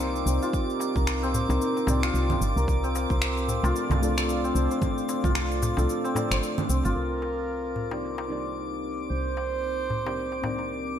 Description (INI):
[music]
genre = organic downtempo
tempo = 112 BPM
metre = 4/4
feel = swing 58% on 16ths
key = C dorian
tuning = A4 = 441 Hz
[part]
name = muted felt-like synth keys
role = accompaniment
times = 0.0-11.0 s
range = A3 to D5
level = -33 LUFS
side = left 1 dB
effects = chorus, sidechain pumping, digital delay
[part]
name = warm analog pad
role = sustained chords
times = 0.0-11.0 s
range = C4 to F5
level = -35 LUFS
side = right 1 dB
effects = chorus, sidechain pumping
[part]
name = santur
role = arpeggios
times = 0.0-10.7 s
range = C4 to C5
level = -31 LUFS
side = left 2 dB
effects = digital delay
[part]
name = woody FM bass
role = bass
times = 0.0-11.0 s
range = G1 to C2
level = -28 LUFS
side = equal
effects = sidechain pumping
[part]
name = electronic shaker, finger snaps and congas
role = drums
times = 0.0-6.9 s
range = none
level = -32 LUFS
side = right 1 dB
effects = overdrive, low-pass filter on perc, low-pass filter on snare, low-pass filter on room, gated reverb
[part]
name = drifting glass-harmonics texture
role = texture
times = 0.0-11.0 s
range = D6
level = -37 LUFS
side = right 2 dB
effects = chorus, built-in reverb
[part]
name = electronic kick drum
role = drums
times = 0.5-5.3 s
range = none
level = -28 LUFS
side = equal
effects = overdrive
[part]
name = darbuka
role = percussion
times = 0.8-10.7 s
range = none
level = -35 LUFS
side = left 2 dB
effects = none
[part]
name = dark clarinet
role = melody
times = 7.0-10.9 s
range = Bb4 to C5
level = -32 LUFS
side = right 3 dB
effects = digital delay
[sound]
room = moderate lush hall reverb, RT60 1.8 s, digital ambience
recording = bright 1980s-style digital production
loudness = -24 LUFS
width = side -9 dB against mid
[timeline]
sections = 0.0-7.0 A section; 7.0-11.0 B section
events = kick drops out 5.9-7.0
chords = 0.0 Cm7; 2.7 Dm/C; 7.0 Cm7